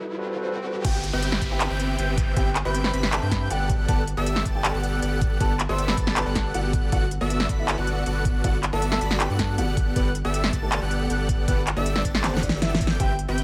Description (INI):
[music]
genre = future bass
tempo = 158 BPM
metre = 4/4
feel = half-time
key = G major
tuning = A4 = 439 Hz
[part]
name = tine electric piano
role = accompaniment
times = 0.0-0.8 s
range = G3 to B4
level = -34 LUFS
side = equal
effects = sidechain pumping, digital delay
[part]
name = riser, swell and downlifter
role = sound effects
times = 0.0-3.9 s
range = none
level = -36 LUFS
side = equal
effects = none
[part]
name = dark baby grand piano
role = melody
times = 0.8-13.1 s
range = A3 to C6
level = -35 LUFS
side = equal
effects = vintage 12-bit sampler grit, sidechain pumping, digital delay
[part]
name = airy dreamy lead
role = arpeggios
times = 0.8-13.4 s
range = E6 to B6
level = -37 LUFS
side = equal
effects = chorus, sidechain pumping, digital delay
[part]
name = dense compressed supersaw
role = riff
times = 0.8-13.4 s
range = B3 to B5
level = -32 LUFS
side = equal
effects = sidechain pumping
[part]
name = saturated sub bass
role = bass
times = 0.8-13.4 s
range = G1 to G2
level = -30 LUFS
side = equal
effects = sidechain pumping
[part]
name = electronic kick drum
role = drums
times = 0.8-13.1 s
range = none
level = -27 LUFS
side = equal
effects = none
[part]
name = pop drum kit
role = drums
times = 0.8-13.4 s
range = crash cymbal, handclaps, hi-hat, snare drum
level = -29 LUFS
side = equal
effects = high-pass filter on snare, high-pass filter on hats, high-pass filter on cymbals
[sound]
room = light reverb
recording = none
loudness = -24 LUFS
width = mono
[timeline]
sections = 0.8-13.4 A section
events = break 0.0-0.8; riser 0.0-0.8; swell 0.1-0.8; drop 0.8-13.4; drum fill 12.2-13.0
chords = 0.0 Gmaj9; 6.9 Bm7/G; 9.8 Gmaj9